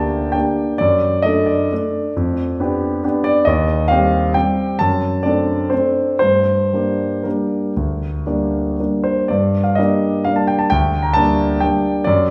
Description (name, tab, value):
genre	classical, piano waltz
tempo	111-143 BPM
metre	3/4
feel	rubato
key	G minor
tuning	A4 = 441 Hz
part	warm concert grand piano	solo	0.0-12.3 s	D2 to Bb5	-17 LUFS	equal	none
room	wet recital hall reverb, RT60 1.5 s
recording	heard from further back in the room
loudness	-17 LUFS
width	mono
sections	0.0-9.3 A section; 9.3-12.3 A section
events	none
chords	0.0 Gm; 0.8 D/F#; 2.2 G7/F; 3.5 Cm/Eb; 4.8 D7/F#; 6.2 Gm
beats	0.35 | 0.81 1.25 1.71 | 2.16 2.59 3.04 | 3.47 3.90 4.35 | 4.80 5.24 5.72 | 6.22 6.73 7.25 | 7.76 8.26 8.79 | 9.31 9.78 10.27 | 10.72 11.16 11.62 | 12.06